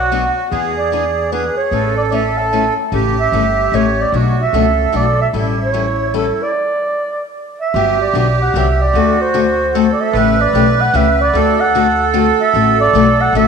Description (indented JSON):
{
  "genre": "acoustic string swing (jazz manouche)",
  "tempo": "150 BPM",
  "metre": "3/4",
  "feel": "swing 62% on 8ths",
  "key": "G major from 7.7 s",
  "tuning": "A4 = 438 Hz",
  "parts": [
    { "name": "breathy clarinet", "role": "melody", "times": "0.0-13.5 s", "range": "A4 to A5", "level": "-16 LUFS", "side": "right 2 dB", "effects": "tape echo" },
    { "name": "accordion", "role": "second line", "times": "0.0-13.5 s", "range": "E4 to B4", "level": "-18 LUFS", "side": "right 8 dB", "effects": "light tremolo tuning" },
    { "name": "upright bass", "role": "bass", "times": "0.0-13.5 s", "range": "G1 to E2", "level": "-19 LUFS", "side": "equal", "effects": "none" },
    { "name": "picked steel-string acoustic guitar", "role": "accompaniment", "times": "0.1-13.5 s", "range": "B2 to B4", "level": "-18 LUFS", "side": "left 9 dB", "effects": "none" }
  ],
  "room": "wet echo chamber reverb, RT60 2.0 s, studio reverb",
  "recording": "1960s-style stereo with parts hard left and right",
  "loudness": "-12 LUFS",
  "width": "side -6 dB against mid",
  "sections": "0.0-7.7 A section; 7.7-13.5 B section",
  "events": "stop 6.5-7.7",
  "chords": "0.0 Bm; 0.5 E7; 1.7 Aadd9; 2.9 A; 4.1 Bm7; 5.3 A7; 6.5 N.C.; 7.7 Gmaj7; 8.9 D7; 10.1 A7; 11.3 D7"
}